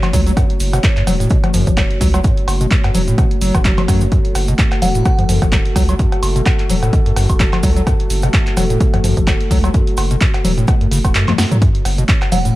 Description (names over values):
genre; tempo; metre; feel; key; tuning
acid house; 128 BPM; 4/4; swing 56% on 16ths; F# minor pentatonic; A4 = 445 Hz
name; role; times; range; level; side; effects
dark analog pad; sustained chords; 0.0-12.6 s; A3 to C#5; -23 LUFS; equal; chorus, phaser, sidechain pumping
punchy analog drum machine; drums; 0.0-12.5 s; congas, cowbell, handclaps, hi-hat, snare drum, toms, woodblock; -20 LUFS; left 1 dB; none
overdriven acid bass; riff; 0.1-12.5 s; F#2 to F#3; -20 LUFS; equal; distortion, wide subtle chorus, cassette tape
saturated sub bass; bass; 0.1-12.5 s; E1 to F#2; -18 LUFS; equal; tube saturation, sidechain pumping
electronic kick drum; drums; 0.1-12.2 s; none; -15 LUFS; equal; none
cabasa; percussion; 0.1-12.5 s; none; -31 LUFS; right 4 dB; none
glassy synth bell; melody; 4.8-5.2, 12.3-12.6 s; F#5; -23 LUFS; right 3 dB; chorus, tape echo
room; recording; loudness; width
little or no reverb; none; -12 LUFS; side -17 dB against mid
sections
0.0-12.6 A section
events
drum fill 11.3-11.6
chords
0.0 F#m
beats
| 0.37 0.84 1.30 1.77 | 2.24 2.71 3.18 3.65 | 4.12 4.59 5.05 5.52 | 5.99 6.46 6.93 7.40 | 7.87 8.34 8.80 9.27 | 9.74 10.21 10.68 11.15 | 11.62 12.09 12.55